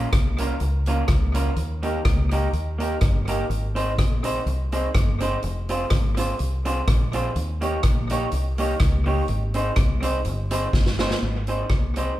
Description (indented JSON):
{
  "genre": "ska",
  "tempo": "124 BPM",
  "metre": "4/4",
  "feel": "swing 54% on 8ths",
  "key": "Ab major",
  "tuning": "A4 = 440 Hz",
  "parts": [
    { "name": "electric guitar through a small old amp", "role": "accompaniment", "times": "0.0-12.1 s", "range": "Bb3 to Db5", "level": "-26 LUFS", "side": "right 1 dB", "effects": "none" },
    { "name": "deep dub fingered electric bass", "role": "bass", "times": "0.0-12.1 s", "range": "F1 to Eb2", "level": "-25 LUFS", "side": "equal", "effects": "none" },
    { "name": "street-band drum kit", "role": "drums", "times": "0.1-12.1 s", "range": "hi-hat, kick drum, rim click, snare drum", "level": "-23 LUFS", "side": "equal", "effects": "none" }
  ],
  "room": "moderate large studio reverb, RT60 1.2 s",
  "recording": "band playing live in one room",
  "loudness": "-20 LUFS",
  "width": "side -14 dB against mid",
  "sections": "0.0-11.2 A section",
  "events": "drum fill 10.7-11.2",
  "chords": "0.0 Bbm; 1.6 Eb; 3.5 Ab; 5.4 Fm; 7.4 Eb7; 9.3 Ab"
}